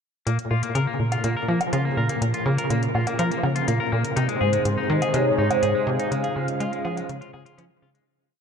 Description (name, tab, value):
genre	ambient, sequencer-driven space music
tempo	123 BPM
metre	4/4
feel	straight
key	Bb minor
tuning	A4 = 440 Hz
part	sweeping resonant pad	sustained chords	0.3-8.1 s	C3 to Bb4	-30 LUFS	right 1 dB	chorus
part	clean electric guitar	arpeggios	0.3-8.1 s	Ab3 to Bb4	-29 LUFS	moving between left 7 dB and right 1 dB	auto-pan, analog delay
part	tight sequencer bass	riff	0.3-8.0 s	Ab2 to Ab3	-23 LUFS	equal	lush chorus, analog delay
part	electronic hi-hat and woodblock	percussion	0.3-8.0 s	none	-34 LUFS	equal	analog delay
part	mellow horn-like synth lead	melody	4.2-7.6 s	C5 to F5	-25 LUFS	equal	ensemble chorus, analog delay
room	wet huge ambient reverb, RT60 8.5 s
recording	none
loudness	-21 LUFS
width	side -6 dB against mid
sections	0.3-8.1 A section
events	fade-in on analog synth pad 0.3-8.1; fade-out 5.5-8.1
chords	0.3 Bbm; 4.2 Ab; 6.1 Db